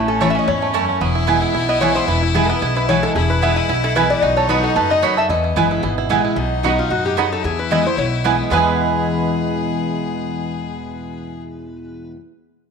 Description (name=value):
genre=bluegrass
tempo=224 BPM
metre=4/4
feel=swing 53% on 8ths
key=E major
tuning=A4 = 441 Hz
part: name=lap resonator guitar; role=melody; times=0.0-12.1 s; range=D#4 to G#5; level=-22 LUFS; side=left 3 dB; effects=none
part: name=clear fiddle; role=second line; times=0.0-11.4 s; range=B3 to G#4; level=-25 LUFS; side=left 10 dB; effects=none
part: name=picked steel-string acoustic guitar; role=accompaniment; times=0.0-12.2 s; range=E2 to F#4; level=-21 LUFS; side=left 2 dB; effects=none
part: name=bluegrass banjo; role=arpeggios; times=0.0-12.1 s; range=G#3 to A4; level=-23 LUFS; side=right 9 dB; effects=none
part: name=upright bass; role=bass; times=0.0-12.1 s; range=E1 to F#2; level=-24 LUFS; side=left 1 dB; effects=none
part: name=mandolin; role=stabs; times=0.2-12.2 s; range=A3 to B5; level=-23 LUFS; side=right 11 dB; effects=none
room=moderate echo chamber reverb, RT60 1.6 s, small room ambience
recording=1960s-style stereo with parts hard left and right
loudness=-15 LUFS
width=side -6 dB against mid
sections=0.0-6.4 A section; 6.4-8.5 B section; 8.5-10.7 C section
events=none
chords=0.0 A; 1.0 E; 4.2 B; 5.3 E; 6.4 B; 7.4 E